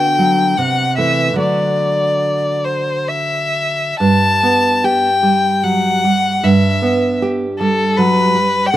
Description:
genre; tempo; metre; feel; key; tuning
romantic duo for violin and classical guitar; 62-80 BPM; 3/4; rubato; G major; A4 = 441 Hz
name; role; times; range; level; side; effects
rich violin; melody; 0.0-8.8 s; A4 to A5; -15 LUFS; left 2 dB; none
nylon-string guitar; accompaniment; 0.0-8.8 s; G2 to G4; -16 LUFS; right 2 dB; none
room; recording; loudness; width
little or no reverb; recorded outdoors, with no room sound; -13 LUFS; side -13 dB against mid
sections
0.0-8.8 A section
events
none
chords
0.0 Bm/D (rootless); 0.6 Am/C; 1.4 D; 4.0 G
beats
0.58 | 1.40 2.24 3.08 | 4.00 4.83 5.63 | 6.42 7.21 7.97 | 8.73

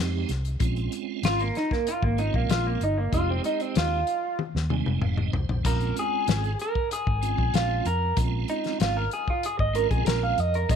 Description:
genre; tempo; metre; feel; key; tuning
straight-eighth soul blues; 95 BPM; 4/4; straight; unclear; A4 = 440 Hz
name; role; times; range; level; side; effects
tonewheel organ; accompaniment; 0.0-10.8 s; G3 to Ab5; -33 LUFS; right 14 dB; slow rotary speaker, overdrive, chorus vibrato
vintage muted fingered electric bass; bass; 0.0-10.8 s; F1 to F2; -27 LUFS; equal; none
warm soul drum kit; drums; 0.3-10.8 s; hi-hat, kick drum, snare drum, splash cymbal, toms; -28 LUFS; left 3 dB; none
electric guitar through a small old amp; melody; 1.2-10.8 s; Bb3 to F5; -27 LUFS; right 1 dB; phaser
room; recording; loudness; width
light reverb; 1960s-style stereo; -23 LUFS; side -7 dB against mid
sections
0.0-10.8 A section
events
clean electric guitar solo 0.0-10.8; drum fill 4.4-5.6; tonewheel organ fill 4.4-5.6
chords
0.0 Fm7; 0.6 Bbm7; 3.1 Fm7; 5.6 Bbm7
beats
| 0.61 1.24 1.87 2.50 | 3.13 3.76 4.39 5.02 | 5.65 6.28 6.91 7.54 | 8.17 8.80 9.43 10.06 | 10.70

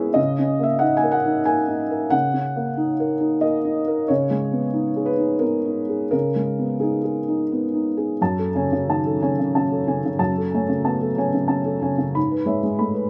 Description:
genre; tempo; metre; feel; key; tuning
neoclassical minimalist piano; 91 BPM; 3/4; rubato; unclear; A4 = 440 Hz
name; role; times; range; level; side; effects
felt-muted upright piano; solo; 0.0-13.1 s; F#2 to B5; -22 LUFS; equal; none
room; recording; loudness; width
little or no reverb; recorded outdoors, with no room sound; -22 LUFS; mono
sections
0.0-8.2 A section; 8.2-13.1 B section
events
none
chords
0.2 D#m7/C#; 4.1 G#m/C#; 8.2 F#madd9; 12.2 C#m7/G#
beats
| 0.17 0.82 1.48 | 2.13 2.78 3.44 | 4.10 4.75 5.43 | 6.13 6.83 7.51 | 8.20 8.86 9.53 | 10.19 10.85 11.51 | 12.16 12.81

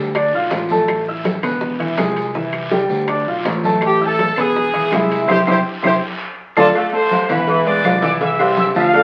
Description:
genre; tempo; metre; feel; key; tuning
latin, salsa; 164 BPM; 4/4; straight; A minor; A4 = 440 Hz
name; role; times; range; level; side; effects
bright grand piano; accompaniment; 0.0-9.0 s; E3 to F6; -21 LUFS; equal; none
fingered electric bass; bass; 0.0-9.0 s; E1 to D2; -29 LUFS; equal; none
bongos and cowbell; percussion; 0.1-9.0 s; none; -30 LUFS; equal; none
guiro; percussion; 0.1-9.0 s; none; -33 LUFS; equal; none
claves; percussion; 0.2-9.0 s; none; -30 LUFS; equal; none
congas; percussion; 0.2-9.0 s; none; -27 LUFS; equal; none
timbales and agogo bells; percussion; 0.2-9.0 s; none; -27 LUFS; equal; none
bright horn section; melody; 3.9-6.7 s; D4 to C5; -19 LUFS; equal; none
bright trumpet section; melody; 6.7-9.0 s; A4 to E6; -21 LUFS; equal; none
clear saxophone section; second line; 6.8-8.8 s; C3 to A3; -26 LUFS; equal; none
room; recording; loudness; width
wet studio reverb, RT60 0.9 s; very old 78 rpm record, vinyl crackle; -17 LUFS; mono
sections
0.0-6.7 A section; 6.7-9.0 B section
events
band accent 5.3-6.7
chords
0.2 Dm; 0.9 A5; 1.6 E; 2.4 C; 3.1 Dm; 3.8 A5; 4.6 E; 5.3 C; 6.0 Dm; 6.7 Am; 7.5 E7; 8.2 C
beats
0.15 0.52 | 0.89 1.25 1.62 1.99 | 2.35 2.72 3.09 3.45 | 3.82 4.19 4.55 4.92 | 5.29 5.65 6.02 6.38 | 6.75 7.11 7.48 7.84 | 8.21 8.57 8.94

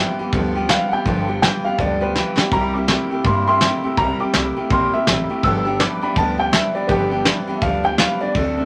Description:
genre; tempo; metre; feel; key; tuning
rockabilly; 164 BPM; 4/4; swing 61% on 8ths; G mixolydian; A4 = 440 Hz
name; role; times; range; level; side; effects
warm upright piano; melody; 0.0-8.6 s; B3 to E6; -24 LUFS; equal; none
picked steel-string acoustic guitar; accompaniment; 0.0-8.7 s; G2 to A4; -26 LUFS; equal; none
electric guitar through a small old amp; riff; 0.0-8.7 s; G2 to Bb3; -28 LUFS; equal; none
upright bass; bass; 0.2-8.7 s; G1 to G2; -29 LUFS; equal; none
soft brush drum kit; drums; 0.3-8.5 s; hi-hat, kick drum, snare drum; -21 LUFS; equal; none
room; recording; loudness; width
wet small room reverb, RT60 0.5 s; none; -19 LUFS; mono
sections
0.0-8.7 A section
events
upright piano solo 0.0-8.7; drum fill 2.2-2.5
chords
0.0 G7; 2.5 C7; 5.4 G7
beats
0.33 0.69 | 1.06 1.42 1.79 2.15 | 2.52 2.88 3.25 3.61 | 3.98 4.34 4.71 5.07 | 5.44 5.80 6.17 6.53 | 6.90 7.26 7.63 7.99 | 8.36

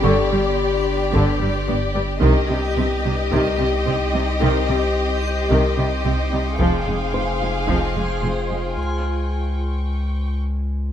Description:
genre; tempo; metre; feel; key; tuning
cinematic, suspense film score; 55 BPM; 4/4; straight; unclear; A4 = 439 Hz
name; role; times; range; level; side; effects
warm studio violin section; melody; 0.0-8.8 s; D5 to F5; -27 LUFS; left 3 dB; none
rich studio violin section; second line; 0.0-8.8 s; G4 to Ab4; -25 LUFS; left 3 dB; none
warm studio viola section; accompaniment; 0.0-8.6 s; D3 to C4; -25 LUFS; right 1 dB; none
backwards swelling texture; sustained chords; 0.0-8.8 s; B3 to G5; -29 LUFS; equal; built-in reverb
warm studio cello section; bass; 0.0-8.6 s; F2 to C3; -26 LUFS; right 2 dB; none
saturated sub bass; drone; 0.0-10.9 s; F1 to Db2; -24 LUFS; equal; none
dark grand piano; texture; 0.0-8.8 s; C5 to G6; -34 LUFS; left 4 dB; none
rich studio violin section; texture; 0.0-10.4 s; G5 to F6; -35 LUFS; equal; none
rich studio double bass section; bass; 0.1-8.3 s; F1 to C2; -25 LUFS; right 2 dB; none
taiko ensemble; drums; 1.1-8.7 s; none; -25 LUFS; left 1 dB; none
room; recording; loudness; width
light reverb; close, detailed microphones; -18 LUFS; side -10 dB against mid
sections
0.0-10.9 A section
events
break 8.8-10.9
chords
0.0 G; 2.2 Cm; 6.6 Fm; 8.8 C5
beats
0.05 1.14 | 2.23 3.32 4.41 5.50 | 6.59 7.68 8.78 9.87

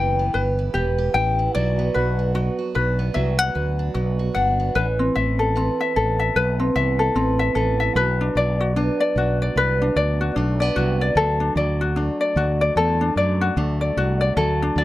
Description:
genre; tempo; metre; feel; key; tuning
acoustic pop; 75 BPM; 4/4; swing 60% on 16ths; unclear; A4 = 440 Hz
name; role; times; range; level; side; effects
ukulele; accompaniment; 0.0-14.8 s; C4 to G5; -21 LUFS; left 3 dB; none
picked steel-string acoustic guitar; arpeggios; 0.0-14.8 s; E3 to G4; -27 LUFS; right 6 dB; none
fretless electric bass; bass; 0.0-14.8 s; E1 to F#2; -22 LUFS; equal; lush chorus
room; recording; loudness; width
little or no reverb; none; -18 LUFS; side -15 dB against mid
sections
0.0-4.8 A section; 4.8-14.8 B section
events
none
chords
0.0 Em; 1.6 Bm; 4.8 Amadd9; 8.0 Bm; 11.2 D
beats
0.75 | 1.55 2.35 3.15 3.95 | 4.75 5.56 6.36 7.16 | 7.96 8.76 9.56 10.36 | 11.16 11.96 12.76 13.56 | 14.37

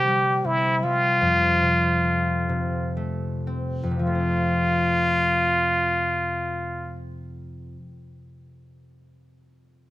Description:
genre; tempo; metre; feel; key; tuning
children's music, lullaby; 55-82 BPM; 3/4; straight; F major; A4 = 436 Hz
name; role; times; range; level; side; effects
trumpet with plunger mute; melody; 0.0-7.0 s; E4 to G4; -21 LUFS; equal; none
concert harp; accompaniment; 0.0-7.8 s; F2 to C4; -26 LUFS; equal; none
room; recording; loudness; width
light reverb; close, detailed microphones; -20 LUFS; side -16 dB against mid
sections
0.0-4.0 A section; 4.0-9.9 B section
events
slowing down 0.0-4.0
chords
0.0 C; 1.2 F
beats
0.44 | 1.21 2.04 2.96 | 3.99 5.08 6.16 | 7.24

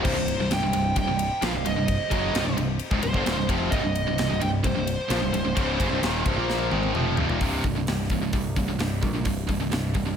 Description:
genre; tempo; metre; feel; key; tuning
heavy metal; 130 BPM; 4/4; straight; C minor; A4 = 440 Hz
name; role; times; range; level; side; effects
high-gain lead guitar; melody; 0.0-6.9 s; C5 to G5; -29 LUFS; right 1 dB; distortion, tape echo
rich chamber string section; sustained chords; 0.0-7.4 s; C3 to C5; -42 LUFS; left 4 dB; none
distorted electric guitar; riff; 0.0-7.4 s; C2 to Bb3; -31 LUFS; equal; overdrive
heavy high-gain guitar; riff; 0.0-10.2 s; C2 to Bb3; -29 LUFS; right 10 dB; distortion
tight distorted guitar; riff; 0.0-10.2 s; C2 to Bb3; -31 LUFS; left 11 dB; distortion
overdriven picked electric bass; bass; 0.0-10.2 s; C1 to C2; -30 LUFS; equal; none
tight metal drum kit; drums; 0.0-10.1 s; crash cymbal, hi-hat, kick drum, ride cymbal, snare drum, toms; -29 LUFS; left 1 dB; none
room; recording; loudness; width
small room ambience; none; -22 LUFS; side -8 dB against mid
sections
0.0-7.4 A section; 7.4-10.2 B section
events
drum fill 6.5-7.4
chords
0.0 Cm; 7.4 C5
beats
| 0.05 0.51 0.97 1.43 | 1.89 2.35 2.81 3.27 | 3.73 4.19 4.65 5.11 | 5.57 6.03 6.49 6.95 | 7.41 7.87 8.33 8.79 | 9.26 9.72

